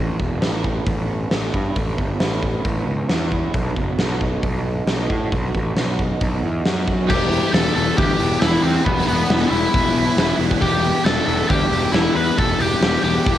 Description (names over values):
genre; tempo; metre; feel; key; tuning
quiet-loud alternative rock; 136 BPM; 4/4; straight; E minor from 7.1 s; A4 = 439 Hz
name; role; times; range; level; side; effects
electric guitar through a small old amp; arpeggios; 0.0-7.1 s; A2 to F#4; -30 LUFS; right 7 dB; tremolo, cassette tape, tape echo
fuzz picked electric bass; bass; 0.0-13.4 s; E1 to A2; -22 LUFS; equal; overdrive
big rock drum kit; drums; 0.2-13.4 s; crash cymbal, hi-hat, kick drum, snare drum; -22 LUFS; equal; cassette tape
octave-fuzz lead guitar; melody; 7.1-13.4 s; B3 to B5; -20 LUFS; left 1 dB; distortion, cassette tape
crunchy overdriven guitar; riff; 7.1-13.4 s; E3 to G4; -28 LUFS; equal; none
scooped high-gain guitar; riff; 7.1-13.4 s; E3 to E4; -27 LUFS; right 11 dB; distortion, cassette tape
thick fuzz guitar; riff; 7.1-13.4 s; E3 to E4; -25 LUFS; left 10 dB; distortion, cassette tape
room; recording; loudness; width
little or no reverb; home recording on cassette; -17 LUFS; side -12 dB against mid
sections
0.0-7.1 A section; 7.1-13.4 B section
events
none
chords
0.0 Aadd9; 3.5 B; 7.1 Em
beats
0.41 0.86 1.31 | 1.75 2.20 2.65 3.09 | 3.54 3.98 4.43 4.87 | 5.32 5.76 6.21 6.65 | 7.09 7.53 7.97 8.42 | 8.86 9.30 9.74 10.18 | 10.62 11.06 11.50 11.94 | 12.38 12.82 13.26